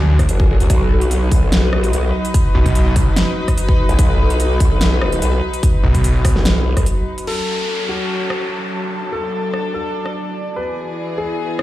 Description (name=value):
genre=heavy wobble dubstep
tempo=146 BPM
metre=4/4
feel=swing 53% on 16ths, half-time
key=unclear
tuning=A4 = 445 Hz
part: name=warm chamber string section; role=sustained chords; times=0.0-11.6 s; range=E3 to B4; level=-24 LUFS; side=left 1 dB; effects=sidechain pumping
part: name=snarling distorted saw bass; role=bass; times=0.0-3.1, 5.8-6.3 s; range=B1 to D2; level=-15 LUFS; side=equal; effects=distortion, overdrive
part: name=airy breathy pad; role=texture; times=0.0-11.6 s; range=E4 to B5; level=-26 LUFS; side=equal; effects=chorus, sidechain pumping
part: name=growl bass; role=bass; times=0.2-6.9 s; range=F#1 to D2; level=-16 LUFS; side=equal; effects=chorus, overdrive
part: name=big-room dance drum kit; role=drums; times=0.2-11.6 s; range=crash cymbal, hi-hat, rim click, snare drum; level=-23 LUFS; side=right 1 dB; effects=none
part: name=electronic kick drum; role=drums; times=0.2-6.8 s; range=none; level=-15 LUFS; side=equal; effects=none
part: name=dark baby grand piano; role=melody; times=7.3-11.6 s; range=F#4 to B4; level=-24 LUFS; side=left 3 dB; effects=digital delay
part: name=downlifter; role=sound effects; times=7.3-10.6 s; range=none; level=-27 LUFS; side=equal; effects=none
room=digital ambience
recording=played on a big sound system in a bare room, large studio reverb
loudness=-14 LUFS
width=side -15 dB against mid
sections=0.0-7.3 A section; 7.3-11.6 B section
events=drop 0.0-7.3; break 6.9-7.3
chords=0.0 D; 0.7 B; 7.3 F#m; 8.9 D; 10.6 E